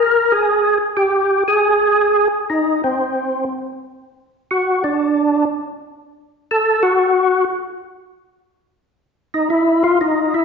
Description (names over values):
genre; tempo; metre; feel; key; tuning
jazz; 120 BPM; 4/4; swing 69% on 8ths; unclear; A4 = 440 Hz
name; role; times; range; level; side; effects
percussive tonewheel organ; solo; 0.0-10.4 s; C4 to Bb4; -14 LUFS; equal; slow rotary speaker, overdrive, chorus vibrato
room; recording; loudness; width
wet recital hall reverb, RT60 1.4 s; recorded in a church or concert hall, nothing above 7.6 kHz; -14 LUFS; side -5 dB against mid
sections
0.0-2.5 A section; 2.5-10.4 B section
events
tonewheel organ solo 2.5-10.4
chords
none